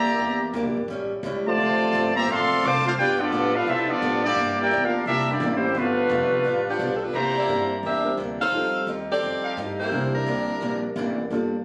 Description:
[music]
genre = jazz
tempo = 173 BPM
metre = 4/4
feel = swing 62% on 8ths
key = C mixolydian from 7.1 s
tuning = A4 = 444 Hz
[part]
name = brilliant trumpet section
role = melody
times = 0.0-6.8 s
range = A3 to D6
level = -24 LUFS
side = equal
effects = none
[part]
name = mellow trombone section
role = second line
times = 0.0-6.8 s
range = C3 to G4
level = -28 LUFS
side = equal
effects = none
[part]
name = picked acoustic archtop guitar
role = accompaniment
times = 0.0-11.6 s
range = G2 to A4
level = -32 LUFS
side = equal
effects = none
[part]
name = upright bass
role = bass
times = 0.0-11.6 s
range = D1 to B2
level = -35 LUFS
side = equal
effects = none
[part]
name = warm saxophone section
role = melody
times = 6.7-10.8 s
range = F3 to F5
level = -28 LUFS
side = equal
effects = none
[part]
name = clear trumpet section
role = stabs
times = 7.1-9.9 s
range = Eb4 to Bb5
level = -30 LUFS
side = equal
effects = none
[part]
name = warm grand piano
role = accompaniment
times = 7.5-11.5 s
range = G3 to Bb4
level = -31 LUFS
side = equal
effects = none
[sound]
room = moderate club reverb, RT60 0.8 s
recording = recorded on a phone in the room, studio reverb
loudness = -24 LUFS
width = mono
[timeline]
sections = 0.0-7.1 A section; 7.1-11.6 B section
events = none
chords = 0.2 Em7b5; 0.9 A7; 1.6 Dm7; 3.0 G9; 4.4 C9; 5.7 G9; 7.1 C9; 8.5 F9; 9.9 C9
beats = | 0.19 0.54 0.89 1.24 | 1.58 1.93 2.28 2.62 | 2.97 3.32 3.67 4.01 | 4.36 4.71 5.05 5.40 | 5.75 6.09 6.44 6.79 | 7.13 7.48 7.83 8.18 | 8.53 8.87 9.22 9.57 | 9.92 10.26 10.61 10.96 | 11.31

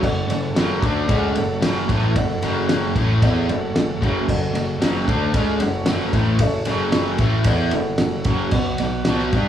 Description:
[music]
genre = classic rock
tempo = 113 BPM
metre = 4/4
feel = straight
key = F# minor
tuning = A4 = 444 Hz
[part]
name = warm grand piano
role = accompaniment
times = 0.0-9.4 s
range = F#4 to G#5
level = -29 LUFS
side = left 2 dB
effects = none
[part]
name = bright tonewheel organ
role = sustained chords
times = 0.0-9.5 s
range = F#3 to B4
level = -33 LUFS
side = right 2 dB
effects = none
[part]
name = crunchy overdriven guitar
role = riff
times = 0.0-9.5 s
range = F#2 to G4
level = -24 LUFS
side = left 4 dB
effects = none
[part]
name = overdriven semi-hollow guitar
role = riff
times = 0.0-9.5 s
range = F#2 to G4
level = -24 LUFS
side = right 5 dB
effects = harmonic tremolo
[part]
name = fuzz fingered electric bass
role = bass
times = 0.0-9.5 s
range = F#1 to G2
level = -25 LUFS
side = equal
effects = overdrive
[part]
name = cloth-damped thuddy drum kit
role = drums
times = 0.0-9.5 s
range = crash cymbal, kick drum, ride cymbal, snare drum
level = -23 LUFS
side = equal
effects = none
[part]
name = cowbell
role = percussion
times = 0.0-9.2 s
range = none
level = -34 LUFS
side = right 2 dB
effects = none
[sound]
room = moderate large studio reverb, RT60 0.8 s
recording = band playing live in one room, small room reverb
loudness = -17 LUFS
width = side -10 dB against mid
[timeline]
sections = 0.0-9.5 A section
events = none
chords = 0.0 F#m; 8.5 B5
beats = | 0.03 0.56 1.09 1.62 | 2.15 2.69 3.22 3.75 | 4.28 4.81 5.34 5.87 | 6.41 6.94 7.47 8.00 | 8.53 9.07

